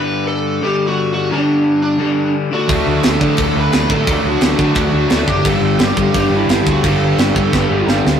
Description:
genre	punk rock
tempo	174 BPM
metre	4/4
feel	straight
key	unclear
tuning	A4 = 440 Hz
part	lead guitar through a small cranked amp	melody	0.0-7.8 s	D4 to B4	-19 LUFS	right 1 dB	overdrive
part	overdriven electric guitar	riff	0.0-8.2 s	G2 to D4	-19 LUFS	left 5 dB	none
part	biting overdriven guitar	riff	2.7-8.2 s	G2 to D4	-20 LUFS	right 4 dB	none
part	distorted electric guitar	riff	2.7-8.2 s	G2 to D4	-20 LUFS	equal	distortion
part	picked electric bass	bass	2.7-8.2 s	F#1 to D3	-20 LUFS	equal	none
part	tight metal drum kit	drums	2.7-8.1 s	crash cymbal, kick drum, snare drum	-18 LUFS	right 1 dB	none
room	light reverb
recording	rough rehearsal-room recording, warm saturation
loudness	-12 LUFS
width	side -8 dB against mid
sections	0.0-8.2 A section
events	drum fill 7.5-8.2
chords	0.0 G5; 2.5 D; 5.5 G

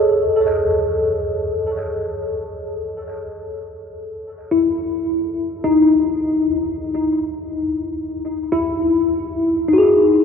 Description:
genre	ambient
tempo	free time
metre	none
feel	none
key	A lydian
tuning	A4 = 440 Hz
part	tine electric piano	solo	0.0-10.2 s	D#4 to D#5	-17 LUFS	left 1 dB	analog chorus, analog delay
room	wet cathedral reverb, RT60 5.4 s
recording	dreamy mix soaked in reverb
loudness	-17 LUFS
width	side -6 dB against mid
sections	0.0-10.2 A section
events	none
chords	0.2 A

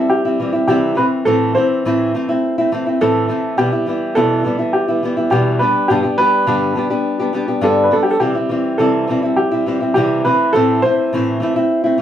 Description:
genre	pop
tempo	104 BPM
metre	4/4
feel	straight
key	unclear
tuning	A4 = 440 Hz
part	clear upright piano	melody	0.0-12.0 s	G4 to C5	-17 LUFS	right 1 dB	none
part	nylon-string guitar	accompaniment	0.0-12.0 s	E2 to G4	-16 LUFS	equal	none
room	wet studio ambience, RT60 0.5 s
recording	heard from further back in the room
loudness	-14 LUFS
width	side -10 dB against mid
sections	0.0-12.0 A section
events	none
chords	0.0 C; 1.0 Am; 3.6 Em; 5.6 G; 8.2 C; 10.2 Am

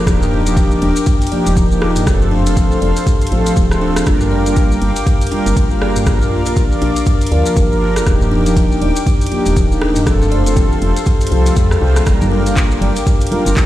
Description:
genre	afro house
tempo	120 BPM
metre	4/4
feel	swing 59% on 16ths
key	G minor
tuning	A4 = 441 Hz
part	warm analog pad	sustained chords	0.0-13.7 s	A4 to D6	-24 LUFS	left 2 dB	chorus, sidechain pumping
part	mellow synth brass	stabs	0.0-13.7 s	F3 to C5	-18 LUFS	equal	chorus, sidechain pumping, digital delay
part	buzzing kalimba	arpeggios	0.1-13.7 s	D4 to D5	-22 LUFS	left 3 dB	sidechain pumping, digital delay
part	woody FM bass	bass	0.1-13.7 s	D1 to F2	-18 LUFS	equal	sidechain pumping
part	afro-pop drum kit	drums	0.1-13.7 s	handclaps, hi-hat, rim click, toms	-22 LUFS	equal	overdrive
part	electronic kick drum	drums	0.1-13.7 s	none	-14 LUFS	equal	overdrive
part	maracas	percussion	0.1-13.7 s	none	-30 LUFS	left 4 dB	none
part	swell	sound effects	11.2-12.1 s	none	-29 LUFS	equal	none
part	congas	percussion	12.1-13.5 s	none	-22 LUFS	right 1 dB	none
room	light reverb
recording	played on a big sound system in a bare room, stone room reverb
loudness	-12 LUFS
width	side -14 dB against mid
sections	0.0-13.7 A section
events	swell 11.2-12.1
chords	0.1 Ebmaj7; 2.1 F; 4.1 Gm7; 8.1 Ebmaj7; 10.1 F; 12.1 Gm7

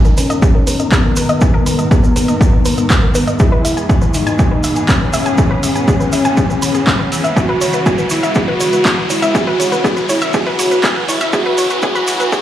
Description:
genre	melodic techno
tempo	121 BPM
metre	4/4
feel	straight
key	G# minor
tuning	A4 = 436 Hz
part	soft supersaw	melody	0.0-12.4 s	B3 to F#4	-18 LUFS	left 1 dB	cassette tape, sidechain pumping, low-pass filter, tape echo
part	rich chamber string section	sustained chords	0.0-12.4 s	G#2 to A#4	-21 LUFS	left 1 dB	sidechain pumping, low-pass filter
part	tube shaker	percussion	0.0-12.4 s	none	-27 LUFS	right 3 dB	none
part	riser	sound effects	0.0-12.4 s	none	-25 LUFS	equal	none
part	analog pluck	arpeggios	0.1-12.4 s	G#4 to E6	-20 LUFS	equal	chorus, sidechain pumping, tape echo
part	round analog bass	bass	0.2-12.3 s	none	barely audible	none	none
part	punchy analog drum machine	drums	0.2-12.4 s	handclaps, hi-hat	-21 LUFS	right 1 dB	overdrive
part	electronic kick drum	drums	0.4-12.4 s	none	-14 LUFS	equal	overdrive
room	moderate recital hall reverb, RT60 1.7 s, digital ambience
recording	played on a big sound system in a bare room, large studio reverb, high-pass filter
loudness	-11 LUFS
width	side -12 dB against mid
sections	0.0-12.4 A section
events	build-up 0.0-12.4; riser 0.0-12.4; filter sweep on synth arpeggio sound 0.0-12.4; filter sweep on supersaw synth 0.0-12.4; filter sweep on string section 0.0-12.4; filter sweep 0.0-12.4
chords	0.0 G#madd9; 3.4 E; 7.4 C#m7; 11.3 A

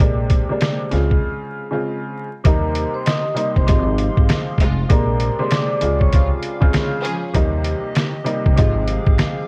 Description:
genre	hip hop, boom-bap hip-hop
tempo	98 BPM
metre	4/4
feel	swing 60% on 16ths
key	Eb major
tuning	A4 = 441 Hz
part	warm upright piano	accompaniment	0.0-9.5 s	C3 to F4	-26 LUFS	equal	high-pass filter, low-pass filter
part	upright bass	bass	0.0-9.2 s	F1 to Eb2	-23 LUFS	equal	none
part	trip hop sampler-style drum kit	drums	0.0-9.4 s	hi-hat, kick drum, snare drum	-20 LUFS	equal	none
part	vibraphone with medium mallets	melody	2.5-6.3 s	Bb4 to Eb6	-28 LUFS	equal	high-pass filter, low-pass filter, tape echo
part	hollow soft pad	sustained chords	2.5-9.5 s	F4 to C6	-34 LUFS	equal	chorus, high-pass filter, low-pass filter
part	finger snaps	percussion	3.1-9.4 s	none	-40 LUFS	equal	none
part	warm studio string section	stabs	3.7-8.7 s	C3 to Ab4	-33 LUFS	equal	high-pass filter, low-pass filter, tape echo
room	small room ambience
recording	worn, warbling old tape, cassette tape, vinyl crackle, warbly pitch drift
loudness	-18 LUFS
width	mono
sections	0.0-2.4 A section; 2.4-9.5 B section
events	break 1.2-2.4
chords	0.0 Bb9; 0.9 Dbmaj7; 2.4 Eb6; 3.7 Ab6; 4.9 Bb9; 5.8 Dbmaj7; 7.3 Eb6; 8.6 Ab6

